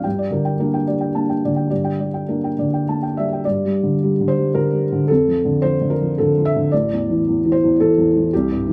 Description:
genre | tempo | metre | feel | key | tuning
neoclassical minimalist piano | 101-114 BPM | 3/4 | rubato | unclear | A4 = 440 Hz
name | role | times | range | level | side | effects
felt-muted upright piano | solo | 0.0-8.7 s | A1 to A5 | -19 LUFS | equal | none
room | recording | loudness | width
moderate large studio reverb, RT60 0.9 s | band playing live in one room, nothing above 10.6 kHz | -19 LUFS | mono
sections
0.0-3.4 A section; 3.4-8.7 B section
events
none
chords
0.0 Gm; 5.1 Dm/F; 6.7 A5

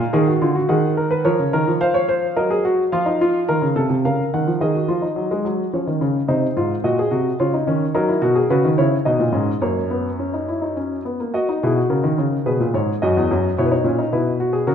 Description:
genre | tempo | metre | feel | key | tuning
classical, baroque-style 3-part fugue for grand piano | 107 BPM | 3/4 | straight | Eb minor, B major from 8.0 s | A4 = 440 Hz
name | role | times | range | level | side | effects
warm baby grand piano | solo | 0.0-14.7 s | E2 to Gb5 | -17 LUFS | equal | none
room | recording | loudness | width
moderate scoring stage reverb, RT60 2.0 s | minimal, uncompressed stereo recording | -17 LUFS | side -8 dB against mid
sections
0.0-4.6 A section; 4.6-11.3 B section; 11.3-14.7 C section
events
none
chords
0.0 Bb; 0.7 Ebm; 1.2 Bbm; 2.4 Gb69; 2.9 F; 4.0 Bbm/Db; 4.6 Ebm; 5.7 Db; 6.3 Cdim; 7.4 Dbadd9; 8.0 D#m; 9.1 G#m; 9.6 F#; 11.3 B; 12.5 C#5; 13.0 F#; 14.1 B5

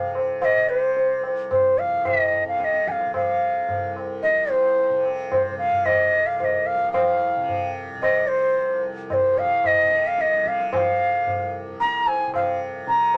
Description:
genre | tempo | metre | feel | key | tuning
indian classical, Hindustani | 111 BPM | 7/4 | straight | unclear | A4 = 440 Hz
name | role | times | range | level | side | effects
bright reedy bansuri | melody | 0.0-13.2 s | C5 to Bb5+26c | -22 LUFS | equal | none
tanpura | drone | 0.0-13.2 s | C2 to C3 | -36 LUFS | equal | none
tabla | percussion | 0.2-13.2 s | none | -29 LUFS | equal | none
room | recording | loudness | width
wet studio reverb, RT60 0.5 s | none | -22 LUFS | mono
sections
0.0-13.2 A section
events
none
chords
none

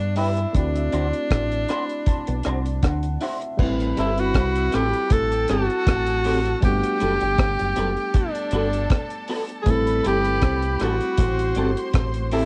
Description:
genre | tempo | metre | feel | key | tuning
lovers rock reggae | 79 BPM | 4/4 | swing 55% on 16ths | unclear | A4 = 443 Hz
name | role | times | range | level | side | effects
clear tenor saxophone | melody | 0.0-12.5 s | D4 to A4 | -27 LUFS | equal | cassette tape, tape echo, plate reverb
tine electric piano | accompaniment | 0.0-12.5 s | G3 to B5 | -32 LUFS | equal | overdrive, tape echo, plate reverb
deep dub fingered electric bass | bass | 0.0-12.5 s | F#1 to G2 | -28 LUFS | equal | none
electric guitar through a small old amp | stabs | 0.2-12.4 s | B3 to C5 | -32 LUFS | equal | ensemble chorus, tape echo, plate reverb
deep reggae drum kit | drums | 0.2-12.5 s | crash cymbal, hi-hat, kick drum, rim click | -25 LUFS | equal | cassette tape
electric guitar through a small old amp | riff | 0.5-12.2 s | F#3 to D4 | -37 LUFS | equal | none
rich symphonic violin section | second line | 3.6-12.5 s | G4 to C6 | -38 LUFS | equal | plate reverb
room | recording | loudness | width
light reverb | home recording on cassette | -22 LUFS | mono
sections
0.0-3.6 A section; 3.6-12.5 B section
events
tine electric piano fill 1.3-3.6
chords
0.0 Em7; 0.5 D7; 3.6 Am7; 6.6 Gmaj9; 9.7 Am7

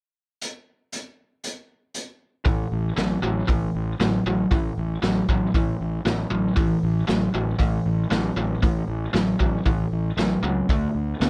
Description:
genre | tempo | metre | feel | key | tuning
blues rock power trio and southern rock | 117 BPM | 4/4 | straight | unclear | A4 = 441 Hz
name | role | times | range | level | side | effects
raw garage drum kit | drums | 0.4-11.3 s | hi-hat, kick drum, snare drum | -27 LUFS | equal | none
biting overdriven guitar | riff | 2.5-11.3 s | A2 to B3 | -26 LUFS | equal | none
fuzz fingered electric bass | bass | 2.5-11.3 s | A1 to D2 | -29 LUFS | equal | overdrive
room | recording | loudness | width
little or no reverb | none | -23 LUFS | mono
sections
0.4-2.5 A section; 2.5-11.3 B section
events
none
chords
0.4 N.C.; 2.5 A5; 10.7 D5

